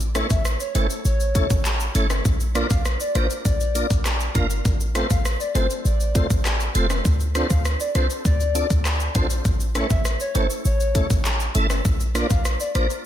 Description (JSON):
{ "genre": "dancehall", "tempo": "100 BPM", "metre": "4/4", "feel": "straight", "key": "unclear", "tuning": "A4 = 439 Hz", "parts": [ { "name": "short 808-style bass", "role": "bass", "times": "0.0-12.9 s", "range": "F1 to D2", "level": "-22 LUFS", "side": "equal", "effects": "none" }, { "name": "island pop drum kit", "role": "drums", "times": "0.0-13.0 s", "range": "handclaps, hi-hat, kick drum, rim click, shaker", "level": "-24 LUFS", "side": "equal", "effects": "none" }, { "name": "maracas and timbales", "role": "percussion", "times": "0.0-13.0 s", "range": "none", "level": "-36 LUFS", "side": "left 8 dB", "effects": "none" }, { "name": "tonewheel organ", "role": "accompaniment", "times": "0.1-12.9 s", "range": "A3 to F5", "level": "-28 LUFS", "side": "right 1 dB", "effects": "overdrive, chorus vibrato, slow rotary speaker" }, { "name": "hollow clarinet-like synth lead", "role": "melody", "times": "0.3-12.9 s", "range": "C5 to F5", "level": "-29 LUFS", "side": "left 2 dB", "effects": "chorus, phaser, analog delay" } ], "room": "light reverb", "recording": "none", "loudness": "-19 LUFS", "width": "side -11 dB against mid", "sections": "0.0-13.1 A section", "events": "none", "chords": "0.0 A; 2.3 Bb; 4.7 F; 7.1 Dm7; 9.5 A; 11.9 Bb" }